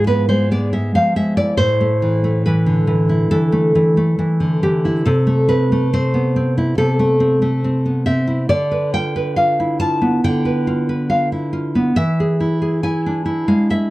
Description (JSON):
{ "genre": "romantic piece for solo classical guitar", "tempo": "70 BPM", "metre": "4/4", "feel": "rubato", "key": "A minor", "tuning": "A4 = 436 Hz", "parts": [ { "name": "nylon-string guitar", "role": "solo", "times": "0.0-13.9 s", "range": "G#2 to A5", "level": "-14 LUFS", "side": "equal", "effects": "none" } ], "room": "wet studio ambience, RT60 0.5 s", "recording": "dark, warm production", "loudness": "-15 LUFS", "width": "side -18 dB against mid", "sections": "0.0-13.9 A section", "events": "none", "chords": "0.0 E/G#; 1.6 Am; 5.0 Am/C; 8.5 Bdim/D; 11.9 E" }